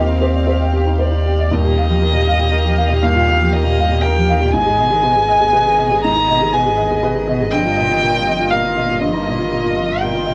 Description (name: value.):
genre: neoclassical piano and strings.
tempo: 120 BPM.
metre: 3/4.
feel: rubato.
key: Eb major.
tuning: A4 = 444 Hz.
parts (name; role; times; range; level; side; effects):
dark violin; melody; 0.0-10.3 s; G4 to Bb5; -20 LUFS; equal; none.
warm cello; second line; 0.0-10.3 s; Eb2 to C4; -26 LUFS; equal; none.
felt-muted upright piano; accompaniment; 0.0-10.3 s; Eb2 to F5; -22 LUFS; equal; none.
warm chamber string section; sustained chords; 0.0-10.3 s; Bb3 to F5; -27 LUFS; equal; none.
punchy sub bass; bass; 0.0-10.3 s; G1 to Eb2; -22 LUFS; equal; none.
room: moderate small room reverb, RT60 0.5 s.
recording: none.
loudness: -16 LUFS.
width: mono.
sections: 0.0-1.5 A section; 1.5-10.3 B section.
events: none.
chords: 0.0 Eb6; 1.5 Ebadd9; 4.5 Abm; 7.5 Ebadd9/G.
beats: 0.48 1.00 | 1.52 2.03 2.53 | 3.03 3.53 4.03 | 4.53 5.03 5.53 | 6.03 6.52 7.02 | 7.51 8.01 8.51 | 9.01 9.51 10.01.